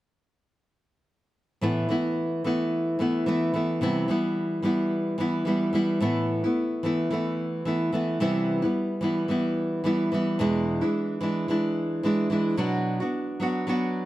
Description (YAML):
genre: pop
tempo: 110 BPM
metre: 4/4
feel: swing 55% on 16ths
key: unclear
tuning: A4 = 440 Hz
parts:
  - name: nylon-string guitar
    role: accompaniment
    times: 1.6-14.1 s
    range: E2 to F#4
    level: -24 LUFS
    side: equal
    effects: none
room: light reverb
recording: close, detailed microphones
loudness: -24 LUFS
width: side -16 dB against mid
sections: 1.6-6.0 A section; 6.0-14.1 B section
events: none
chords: 1.6 Asus2; 3.8 Cmaj7; 6.0 Asus2; 8.2 Cmaj7; 10.4 E7; 12.6 Bm